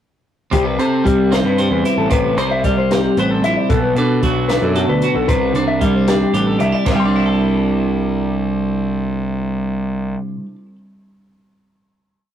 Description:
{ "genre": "math rock and midwest emo", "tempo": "76 BPM (dotted quarters)", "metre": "6/8", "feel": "straight", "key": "C lydian", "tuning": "A4 = 443 Hz", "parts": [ { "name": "twelve-string electric guitar", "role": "accompaniment", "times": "0.5-10.8 s", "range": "B2 to C5", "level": "-17 LUFS", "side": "right 2 dB", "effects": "spring reverb" }, { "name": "mellow electric guitar", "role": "arpeggios", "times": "0.5-10.3 s", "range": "F#4 to C6", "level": "-20 LUFS", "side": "left 5 dB", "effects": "none" }, { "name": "fuzz picked electric bass", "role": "bass", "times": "0.5-10.1 s", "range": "A1 to C3", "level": "-22 LUFS", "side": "right 1 dB", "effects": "overdrive" }, { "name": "compact cocktail drum kit", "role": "drums", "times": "0.5-7.0 s", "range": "hi-hat, kick drum, ride cymbal, snare drum", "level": "-21 LUFS", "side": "equal", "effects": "none" } ], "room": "light reverb", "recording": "rough rehearsal-room recording, warm saturation", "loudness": "-14 LUFS", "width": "side -10 dB against mid", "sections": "0.5-6.9 A section; 6.9-10.0 final chord", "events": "none", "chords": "0.5 C6; 3.7 Bm7; 5.3 C69" }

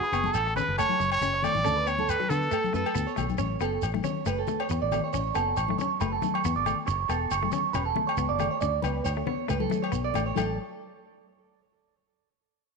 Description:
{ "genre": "highlife guitar band", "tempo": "138 BPM", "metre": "4/4", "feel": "swing 54% on 16ths", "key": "A major", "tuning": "A4 = 439 Hz", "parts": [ { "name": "bright trumpet", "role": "melody", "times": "0.0-3.1 s", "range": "G#4 to D5", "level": "-27 LUFS", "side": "equal", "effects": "none" }, { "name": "semi-hollow electric guitar", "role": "accompaniment", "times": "0.0-10.5 s", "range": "F#3 to C#4", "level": "-35 LUFS", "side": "left 14 dB", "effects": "none" }, { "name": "electric guitar at the edge of break-up", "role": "arpeggios", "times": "0.0-10.6 s", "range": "A4 to D5", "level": "-29 LUFS", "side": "right 10 dB", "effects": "phaser, tape echo" }, { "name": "shekere", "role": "percussion", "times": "0.0-10.6 s", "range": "none", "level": "-38 LUFS", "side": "right 5 dB", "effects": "none" }, { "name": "fingered electric bass", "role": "bass", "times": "0.1-10.6 s", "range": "E1 to D3", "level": "-31 LUFS", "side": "equal", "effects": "none" }, { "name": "agogo bells", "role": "percussion", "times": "0.1-10.5 s", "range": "none", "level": "-36 LUFS", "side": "left 12 dB", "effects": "none" }, { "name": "congas", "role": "percussion", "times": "0.2-10.6 s", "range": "none", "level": "-34 LUFS", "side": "left 11 dB", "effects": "none" } ], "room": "moderate echo chamber reverb, RT60 1.7 s, small room ambience", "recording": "1960s-style stereo with parts hard left and right", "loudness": "-25 LUFS", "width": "side -4 dB against mid", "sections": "0.0-3.4 A section; 3.4-10.4 B section; 10.4-12.1 C section", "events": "none", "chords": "0.0 F#m; 1.6 D5; 3.4 A; 6.9 F#m7; 8.6 D5; 10.4 N.C." }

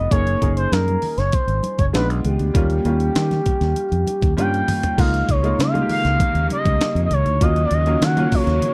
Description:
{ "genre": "polished 1980s jazz-funk pop", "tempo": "99 BPM", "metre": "4/4", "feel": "straight", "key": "unclear", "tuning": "A4 = 440 Hz", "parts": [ { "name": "expressive portamento lead", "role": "melody", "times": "0.0-8.7 s", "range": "G4 to G5", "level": "-25 LUFS", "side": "equal", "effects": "chorus, slapback echo" }, { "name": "warm grand piano", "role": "accompaniment", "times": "0.0-8.7 s", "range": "Gb3 to Cb5", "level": "-27 LUFS", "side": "equal", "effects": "subtle chorus" }, { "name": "fingered electric bass", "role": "bass", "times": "0.0-8.6 s", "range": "Gb1 to Eb3", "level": "-23 LUFS", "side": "equal", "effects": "none" }, { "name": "breakbeat sampler-style drum kit", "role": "drums", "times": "0.1-8.7 s", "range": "crash cymbal, hi-hat, kick drum, snare drum, toms", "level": "-24 LUFS", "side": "equal", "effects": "none" }, { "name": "congas", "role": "percussion", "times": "0.3-8.7 s", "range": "none", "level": "-33 LUFS", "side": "equal", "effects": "none" }, { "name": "bright studio string section", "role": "sustained chords", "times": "5.0-8.7 s", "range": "Db3 to Bb3", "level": "-32 LUFS", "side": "equal", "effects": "none" } ], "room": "little or no reverb", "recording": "dry, close 1970s-style studio recording", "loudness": "-19 LUFS", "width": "mono", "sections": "0.0-5.0 A section; 5.0-8.7 B section", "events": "drum fill 4.4-5.0", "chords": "0.1 Gb6; 1.9 Bb7b9; 2.5 Eb9; 5.0 Db6; 7.4 Ebm9" }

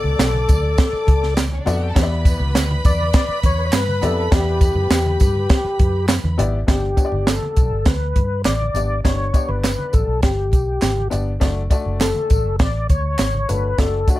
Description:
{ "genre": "uptempo 1960s-style soul", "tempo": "102 BPM", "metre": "4/4", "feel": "straight", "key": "unclear", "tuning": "A4 = 440 Hz", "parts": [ { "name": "mellow tonewheel organ", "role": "melody", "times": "0.0-14.2 s", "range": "F#4 to D5", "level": "-23 LUFS", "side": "left 2 dB", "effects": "overdrive, chorus vibrato, slow rotary speaker" }, { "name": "warm studio violin section", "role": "second line", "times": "0.0-6.3 s", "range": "C#4 to D6", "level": "-29 LUFS", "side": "right 1 dB", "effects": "slapback echo" }, { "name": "warm upright piano", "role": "accompaniment", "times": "0.0-14.2 s", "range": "G2 to D5", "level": "-27 LUFS", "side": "left 4 dB", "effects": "none" }, { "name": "vintage muted fingered electric bass", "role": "bass", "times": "0.0-14.0 s", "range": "F#1 to G2", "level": "-21 LUFS", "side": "equal", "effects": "none" }, { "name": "congas", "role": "percussion", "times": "0.0-14.2 s", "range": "none", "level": "-32 LUFS", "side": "right 1 dB", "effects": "none" }, { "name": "compact cocktail drum kit", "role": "drums", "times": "0.2-14.2 s", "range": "hi-hat, kick drum, snare drum", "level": "-16 LUFS", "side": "equal", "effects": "none" }, { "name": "handclaps and tambourine", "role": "percussion", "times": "0.2-14.2 s", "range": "none", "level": "-32 LUFS", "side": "right 3 dB", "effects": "none" } ], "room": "little or no reverb", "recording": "none", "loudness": "-16 LUFS", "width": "side -16 dB against mid", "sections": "0.0-6.7 A section; 6.7-14.2 B section", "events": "none", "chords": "0.0 Bm7; 2.0 Em7; 6.7 G; 11.4 D/F#" }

